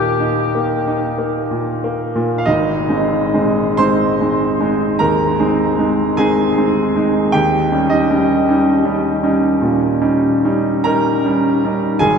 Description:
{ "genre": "classical, romantic duo for cor anglais and grand piano", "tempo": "44-54 BPM", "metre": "4/4", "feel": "rubato", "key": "Ab major", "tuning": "A4 = 440 Hz", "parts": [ { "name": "warm cor anglais", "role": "melody", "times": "0.0-1.1 s", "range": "G4", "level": "-25 LUFS", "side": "left 4 dB", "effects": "none" }, { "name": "bright baby grand piano", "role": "accompaniment", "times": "0.0-12.2 s", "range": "Eb1 to C6", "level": "-14 LUFS", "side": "right 1 dB", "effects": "none" } ], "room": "wet cathedral reverb, RT60 6.6 s", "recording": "dark, warm production", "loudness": "-14 LUFS", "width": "side -6 dB against mid", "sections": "0.0-2.5 A section; 2.5-12.2 B section", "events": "none", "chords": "0.0 Eb; 2.5 Ab; 7.3 Eb7", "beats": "1.18 | 2.46 3.78 4.99 6.18 | 7.34 8.47 9.61 10.85 | 12.01" }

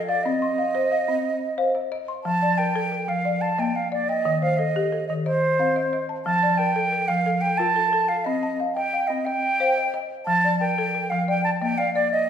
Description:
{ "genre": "southern african traditional", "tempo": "120 BPM (dotted quarters)", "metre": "12/8", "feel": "straight", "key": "F mixolydian", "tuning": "A4 = 443 Hz", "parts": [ { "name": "breathy concert flute", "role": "melody", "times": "0.0-12.3 s", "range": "C5 to A5", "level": "-22 LUFS", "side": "right 2 dB", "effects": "none" }, { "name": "folk marimba with medium hard mallets", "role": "arpeggios", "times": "0.0-12.3 s", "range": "Eb3 to C6", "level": "-25 LUFS", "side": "left 2 dB", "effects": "none" } ], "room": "wet recital hall reverb, RT60 1.4 s", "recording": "recorded in a church or concert hall", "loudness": "-20 LUFS", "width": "side -8 dB against mid", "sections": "0.0-2.2 A section; 2.2-12.3 A section", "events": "none", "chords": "0.3 Cm; 2.2 F; 3.2 Bb; 4.2 Eb; 5.3 Cm; 6.3 F; 8.3 Cm; 10.3 F; 11.3 Bb", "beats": "| 0.25 0.75 1.25 1.75 | 2.25 2.75 3.25 3.75 | 4.25 4.75 5.25 5.75 | 6.26 6.76 7.26 7.76 | 8.27 8.77 9.27 9.77 | 10.28 10.78 11.28 11.78 | 12.29" }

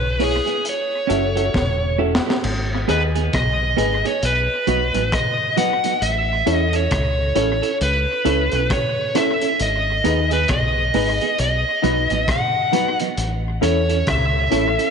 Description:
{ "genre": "roots reggae", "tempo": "67 BPM", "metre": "4/4", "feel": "swing 60% on 16ths", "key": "unclear", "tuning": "A4 = 440 Hz", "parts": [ { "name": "dark smooth lead guitar", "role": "melody", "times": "0.0-14.9 s", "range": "G#4 to F#5", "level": "-21 LUFS", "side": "equal", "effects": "overdrive, tube saturation, tape echo" }, { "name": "deep dub fingered electric bass", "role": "bass", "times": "0.0-14.8 s", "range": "E1 to E2", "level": "-22 LUFS", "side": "left 1 dB", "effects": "none" }, { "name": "clean electric guitar", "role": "accompaniment", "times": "0.2-14.9 s", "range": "F#3 to A4", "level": "-24 LUFS", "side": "right 10 dB", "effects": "spring reverb, tape echo" }, { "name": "warm upright piano", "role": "stabs", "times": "0.2-14.7 s", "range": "D#4 to E5", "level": "-26 LUFS", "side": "left 12 dB", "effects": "tube saturation" }, { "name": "crunchy breakbeat drum kit", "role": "drums", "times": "0.2-14.9 s", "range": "crash cymbal, hi-hat, kick drum, rim click, snare drum", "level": "-26 LUFS", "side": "left 1 dB", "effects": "tape echo" } ], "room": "moderate echo chamber reverb, RT60 2.2 s", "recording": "1960s-style stereo with parts hard left and right, nothing above 10.6 kHz", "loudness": "-17 LUFS", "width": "side -6 dB against mid", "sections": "0.0-2.4 A section; 2.4-14.9 B section", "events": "drum fill 1.5-2.4", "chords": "0.0 C#m7; 0.6 F#m7; 2.4 G#m; 4.2 B; 6.0 A; 9.6 G#m; 11.4 B; 13.2 A", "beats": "0.65 1.54 | 2.44 3.33 4.23 5.12 | 6.02 6.91 7.81 8.70 | 9.60 10.49 11.39 12.28 | 13.18 14.07" }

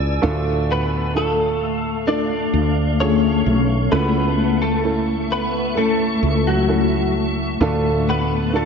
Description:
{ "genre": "pop ballad", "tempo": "65 BPM", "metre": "4/4", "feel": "straight", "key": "unclear", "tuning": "A4 = 444 Hz", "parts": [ { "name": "warm concert grand piano", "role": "accompaniment", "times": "0.0-8.7 s", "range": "A2 to A4", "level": "-23 LUFS", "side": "right 3 dB", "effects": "none" }, { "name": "granular cloud pad", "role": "sustained chords", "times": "0.0-8.7 s", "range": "A3 to E6", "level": "-22 LUFS", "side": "left 4 dB", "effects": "built-in reverb, lush chorus" }, { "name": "woody fretless electric bass", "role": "bass", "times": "0.0-8.7 s", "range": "B1 to D2", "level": "-22 LUFS", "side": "equal", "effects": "none" }, { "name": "direct-recorded clean electric guitar", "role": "melody", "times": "0.7-8.7 s", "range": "F#3 to D5", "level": "-22 LUFS", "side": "left 1 dB", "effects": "ensemble chorus" } ], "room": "moderate lush hall reverb, RT60 2.8 s", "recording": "dreamy mix soaked in reverb, nothing above 7.5 kHz", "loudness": "-17 LUFS", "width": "side -6 dB against mid", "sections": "0.2-8.7 A section", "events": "none", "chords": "0.2 Dm; 3.9 A/C#; 7.6 Dm", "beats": "| 0.23 1.15 2.08 3.00 | 3.92 4.84 5.77 6.69 | 7.61 8.54" }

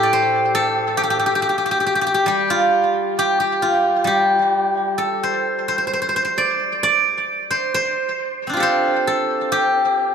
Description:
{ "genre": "chinese traditional, Chinese solo plucked strings", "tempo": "64-70 BPM", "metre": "4/4", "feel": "rubato", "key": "G shang mode", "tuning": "A4 = 440 Hz", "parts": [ { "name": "steel-string zither", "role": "solo", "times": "0.0-10.1 s", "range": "A2 to D5", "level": "-16 LUFS", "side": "equal", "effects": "tape echo" } ], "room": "wet plate reverb, RT60 2.5 s", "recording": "dreamy mix soaked in reverb", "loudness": "-16 LUFS", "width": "side -7 dB against mid", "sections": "0.0-10.1 A section", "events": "none", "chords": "none", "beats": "0.53 1.39 | 2.28 3.16 4.05 4.97 | 5.91 6.83 7.74 8.65 | 9.54" }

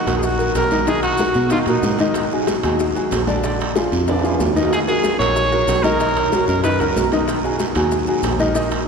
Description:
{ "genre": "latin, salsa", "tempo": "188 BPM", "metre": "4/4", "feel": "straight", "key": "unclear", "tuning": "A4 = 440 Hz", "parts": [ { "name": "clear trumpet", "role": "melody", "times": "0.0-2.0, 4.7-7.1 s", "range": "D#4 to Db5", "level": "-22 LUFS", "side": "right 1 dB", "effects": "none" }, { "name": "fingered electric bass", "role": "bass", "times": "0.0-8.9 s", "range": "Bb1 to B2", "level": "-23 LUFS", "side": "equal", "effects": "none" }, { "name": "bright upright piano", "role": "accompaniment", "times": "0.1-8.8 s", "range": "D3 to Eb5", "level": "-20 LUFS", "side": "left 1 dB", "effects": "none" }, { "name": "bongos", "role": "percussion", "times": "0.1-8.7 s", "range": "none", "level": "-29 LUFS", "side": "left 4 dB", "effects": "none" }, { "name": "congas", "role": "percussion", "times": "0.1-8.9 s", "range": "none", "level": "-30 LUFS", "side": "right 1 dB", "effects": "none" }, { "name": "guiro", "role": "percussion", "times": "0.1-8.9 s", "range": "none", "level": "-34 LUFS", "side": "right 4 dB", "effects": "none" }, { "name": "maracas", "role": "percussion", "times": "0.1-8.9 s", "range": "none", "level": "-38 LUFS", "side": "left 4 dB", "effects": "none" }, { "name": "timbales", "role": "percussion", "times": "0.1-8.9 s", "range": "none", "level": "-25 LUFS", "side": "right 4 dB", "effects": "none" } ], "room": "wet cathedral reverb, RT60 5.7 s", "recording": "recorded in a church or concert hall", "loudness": "-16 LUFS", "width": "side -5 dB against mid", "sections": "0.0-8.9 A section", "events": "drum fill 4.1-4.7", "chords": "0.0 Ebm; 0.9 Bmaj7; 2.2 Absus2; 3.4 Bb7; 4.7 Ebm7; 6.0 Bmaj7; 7.3 Abm9/Cb", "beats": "0.23 0.56 | 0.88 1.20 1.52 1.84 | 2.16 2.48 2.80 3.12 | 3.44 3.76 4.08 4.40 | 4.72 5.04 5.36 5.68 | 6.00 6.32 6.64 6.96 | 7.28 7.60 7.92 8.24 | 8.56 8.88" }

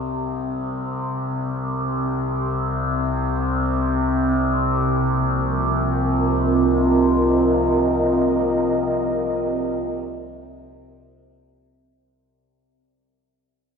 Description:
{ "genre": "ambient", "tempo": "free time", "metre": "none", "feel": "none", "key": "C minor", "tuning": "A4 = 439 Hz", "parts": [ { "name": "overtone-sweeping drone", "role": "drone", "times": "0.0-12.1 s", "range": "C2 to C3", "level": "-21 LUFS", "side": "left 1 dB", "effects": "chorus, built-in reverb, phaser" }, { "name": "dark analog pad", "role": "sustained chords", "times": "3.9-12.0 s", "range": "C4 to Eb5", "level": "-20 LUFS", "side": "right 2 dB", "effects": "chorus" } ], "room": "wet cathedral reverb, RT60 5.3 s", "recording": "none", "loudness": "-19 LUFS", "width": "side -6 dB against mid", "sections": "0.0-12.0 A section", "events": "fade-in on synth drone 0.0-12.0; fade-out 6.6-12.0", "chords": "0.0 Cm", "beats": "free time" }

